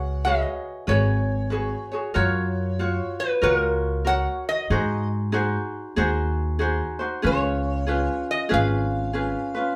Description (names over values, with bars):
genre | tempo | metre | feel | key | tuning
Hawaiian | 94 BPM | 4/4 | swing 64% on 8ths | unclear | A4 = 440 Hz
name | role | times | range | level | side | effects
metal-body resonator slide guitar | melody | 0.0-9.8 s | A#4 to F#5 | -28 LUFS | equal | none
ukulele | accompaniment | 0.0-9.8 s | C#4 to C#5 | -28 LUFS | equal | none
upright bass | bass | 0.0-9.3 s | G#1 to G#2 | -27 LUFS | equal | none
room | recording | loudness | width
wet studio reverb, RT60 0.8 s | band playing live in one room | -24 LUFS | mono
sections
0.0-9.8 A section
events
none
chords
0.0 C#7sus4; 2.2 F#maj7; 4.7 G#7; 7.2 C#7